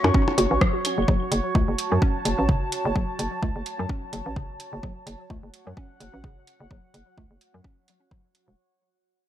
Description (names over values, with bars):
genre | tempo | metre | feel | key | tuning
minimal techno | 128 BPM | 4/4 | swing 57% on 16ths | F# minor | A4 = 439 Hz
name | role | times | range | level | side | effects
hollow knocking FM bass | bass | 0.0-8.5 s | E1 to F#2 | -26 LUFS | equal | sidechain pumping
percussion blips and claves | percussion | 0.0-1.0 s | none | -27 LUFS | left 2 dB | tape echo
warbly tape-like pad | texture | 0.0-8.6 s | F#4 to C#6 | -29 LUFS | right 2 dB | chorus, built-in reverb, sidechain pumping
hollow square pluck | riff | 0.1-8.2 s | C#3 to F#4 | -30 LUFS | left 1 dB | chorus, sidechain pumping, analog delay
electronic kick drum | drums | 0.1-8.2 s | none | -24 LUFS | equal | none
booming analog drum machine | drums | 0.4-8.5 s | hi-hat, rim click | -29 LUFS | right 1 dB | none
room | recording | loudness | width
light reverb | echo-heavy mix | -22 LUFS | side -12 dB against mid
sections
0.0-8.6 A section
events
fade-out 0.0-8.6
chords
0.0 F#m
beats
0.14 0.61 | 1.08 1.55 2.02 2.49 | 2.96 3.43 3.89 4.36 | 4.83 5.30 5.77 6.24 | 6.71 7.18 7.64 8.11